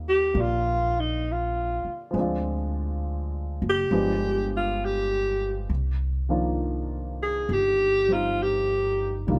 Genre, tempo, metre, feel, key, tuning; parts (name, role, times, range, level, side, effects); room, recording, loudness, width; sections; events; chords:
jazz ballad; 67 BPM; 4/4; swing 67% on 8ths; C minor; A4 = 440 Hz
warm baby grand piano; accompaniment; 0.0-9.4 s; Eb3 to D5; -33 LUFS; equal
upright bass; bass; 0.0-9.4 s; F#1 to Eb2; -31 LUFS; equal
breathy alto saxophone; melody; 0.1-9.2 s; Eb4 to Ab4; -26 LUFS; equal
light reverb; -26 LUFS; mono
0.0-9.4 A section
0.0 Eb6; 2.1 Dm7b5; 3.9 G7b9; 5.7 Cm11